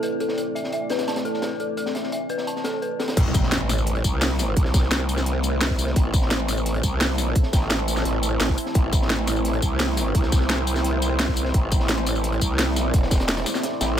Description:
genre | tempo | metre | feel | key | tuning
dark technical drum and bass | 172 BPM | 4/4 | straight | A minor | A4 = 441 Hz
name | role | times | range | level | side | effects
deep dark ambient pad | sustained chords | 0.0-14.0 s | A3 to D5 | -28 LUFS | right 1 dB | chorus, built-in reverb, sidechain pumping
dark detuned synth bell | arpeggios | 0.0-3.1 s | A4 to A5 | -28 LUFS | left 2 dB | chorus, phaser, sidechain pumping, ping-pong delay
crunchy breakbeat drum kit | drums | 0.0-13.9 s | hi-hat, snare drum | -33 LUFS | equal | high-pass filter on hats, high-pass filter on snare, high-pass filter on room
growl bass | bass | 3.2-14.0 s | E1 to C2 | -24 LUFS | equal | chorus, tube saturation
drum and bass drum kit | drums | 3.2-13.9 s | crash cymbal, hi-hat, snare drum, tambourine | -25 LUFS | equal | low-pass filter on hats, low-pass filter on cymbals, low-pass filter on perc, low-pass filter on snare
electronic kick drum | drums | 3.2-13.2 s | none | -20 LUFS | equal | none
impact | sound effects | 3.2-4.6 s | none | -29 LUFS | equal | none
room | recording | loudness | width
light reverb, digital ambience | none | -20 LUFS | side -10 dB against mid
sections
0.0-3.2 A section; 3.2-14.0 B section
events
filter sweep on synth bell 0.0-3.2; drop 3.2-14.0; impact 3.2-4.6; kick drops out 13.6-14.0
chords
0.0 Am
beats
0.03 | 0.38 0.73 1.08 1.43 | 1.77 2.12 2.47 2.82 | 3.17 3.52 3.87 4.22 | 4.57 4.91 5.26 5.61 | 5.96 6.31 6.66 7.01 | 7.36 7.71 8.05 8.40 | 8.75 9.10 9.45 9.80 | 10.15 10.50 10.84 11.19 | 11.54 11.89 12.24 12.59 | 12.94 13.29 13.63 13.98

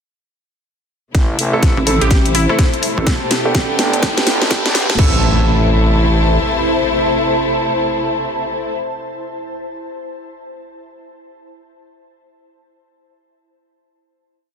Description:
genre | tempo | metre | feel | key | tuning
bass house | 125 BPM | 4/4 | swing 61% on 16ths | A minor | A4 = 441 Hz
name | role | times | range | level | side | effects
warm studio string section | sustained chords | 1.1-8.8 s | B2 to G4 | -22 LUFS | left 3 dB | sidechain pumping
growling FM bass | bass | 1.1-6.4 s | G1 to B1 | -17 LUFS | equal | tube saturation, sidechain pumping, high-pass filter
garage drum kit | drums | 1.1-5.1 s | crash cymbal, kick drum | -15 LUFS | equal | studio reverb
garage drum kit | drums | 1.1-5.0 s | hi-hat, snare drum | -19 LUFS | equal | studio reverb
riser and impact | sound effects | 2.7-8.8 s | none | -24 LUFS | equal | none
ethereal airy pad | texture | 1.8-8.9 s | E4 to A5 | -21 LUFS | equal | ensemble chorus, built-in reverb, sidechain pumping
warm concert grand piano | stabs | 1.5-8.8 s | A3 to A4 | -23 LUFS | right 2 dB | sidechain pumping, ping-pong delay
pulsing pluck wobble bass | bass | 1.8-5.0 s | G1 to A1 | -16 LUFS | equal | chorus, sidechain pumping
glassy wavetable pluck | melody | 2.0-2.6 s | E4 to G4 | -22 LUFS | equal | chorus, ping-pong delay
room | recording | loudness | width
light reverb | dense, heavily limited modern master, high-pass filter | -13 LUFS | side -6 dB against mid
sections
1.1-5.0 build; 5.0-8.8 final chord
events
build-up 1.1-5.0; drum fill 1.1-5.0; filter sweep 1.1-5.0; riser 2.7-5.0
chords
1.1 Am; 3.1 Gadd9; 5.0 Am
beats
| 1.15 1.63 2.11 2.59 | 3.07 3.55 4.03 4.51 | 4.99 5.47 5.95 6.43 | 6.91 7.39 7.87 8.35

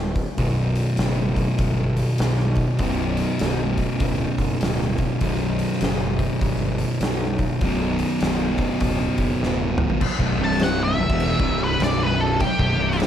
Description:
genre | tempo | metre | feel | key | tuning
stoner and doom metal | 100 BPM | 4/4 | swing 63% on 8ths | B minor | A4 = 440 Hz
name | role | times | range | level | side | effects
fuzz fingered electric bass | bass | 0.0-13.1 s | B0 to B1 | -27 LUFS | equal | overdrive
oversized low-tuned drum kit | drums | 0.2-13.1 s | crash cymbal, hi-hat, kick drum, snare drum, toms | -25 LUFS | equal | none
thick fuzz guitar | riff | 0.4-13.1 s | B1 to E3 | -22 LUFS | equal | distortion
octave-fuzz lead guitar | melody | 10.4-13.0 s | G4 to A5 | -23 LUFS | equal | wah, distortion, analog delay
room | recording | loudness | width
light reverb | none | -19 LUFS | side -10 dB against mid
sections
0.0-10.0 A section; 10.0-13.1 B section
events
drum fill 9.4-10.0; lead electric guitar solo 10.0-13.1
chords
0.0 Bm; 10.0 B5; 10.3 C5; 10.9 B5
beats
| 0.39 0.99 1.59 2.19 | 2.80 3.40 4.00 4.61 | 5.21 5.81 6.41 7.01 | 7.62 8.22 8.82 9.42 | 10.02 10.62 11.21 11.81 | 12.41 13.00

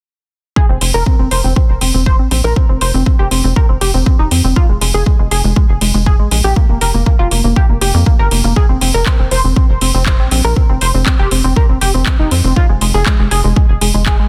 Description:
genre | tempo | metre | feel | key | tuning
progressive house | 120 BPM | 4/4 | straight | F minor | A4 = 440 Hz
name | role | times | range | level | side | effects
tight sequenced synth | arpeggios | 0.6-14.3 s | Ab3 to C5 | -20 LUFS | equal | chorus, cassette tape, sidechain pumping, delay
electronic kick drum | drums | 0.6-14.2 s | none | -14 LUFS | equal | none
tight sequencer bass | bass | 0.7-14.3 s | F1 to F2 | -17 LUFS | equal | sidechain pumping
house drum kit | drums | 0.8-14.2 s | handclaps, hi-hat | -21 LUFS | equal | none
room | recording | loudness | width
digital ambience | dense, heavily limited modern master | -12 LUFS | mono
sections
0.6-14.3 A section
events
none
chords
0.6 F5; 4.6 Fmadd11; 6.6 Fsus24; 8.6 F5; 12.6 Fm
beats
| 0.56 1.06 1.56 2.06 | 2.56 3.06 3.56 4.06 | 4.56 5.06 5.56 6.06 | 6.56 7.06 7.56 8.06 | 8.56 9.06 9.56 10.06 | 10.56 11.06 11.56 12.06 | 12.56 13.06 13.56 14.06

